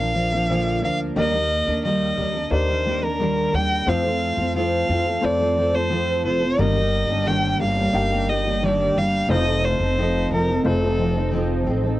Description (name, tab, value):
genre	acoustic pop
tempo	89 BPM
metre	4/4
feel	straight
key	unclear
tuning	A4 = 436 Hz
part	warm violin	melody	0.0-11.3 s	A4 to G5	-23 LUFS	equal	cassette tape
part	fingerpicked steel-string acoustic guitar	accompaniment	0.0-12.0 s	G2 to Bb4	-24 LUFS	equal	double-tracked left and right, cassette tape
part	upright bass	bass	0.0-12.0 s	F1 to F2	-25 LUFS	equal	none
part	warm upright piano	accompaniment	1.2-12.0 s	A3 to G5	-28 LUFS	left 3 dB	cassette tape
room	light reverb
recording	home recording on cassette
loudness	-19 LUFS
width	side -15 dB against mid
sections	0.0-12.0 A section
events	none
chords	0.0 Bb; 1.2 Ebmaj7; 3.9 F; 6.6 Ebmaj7/G; 9.3 F7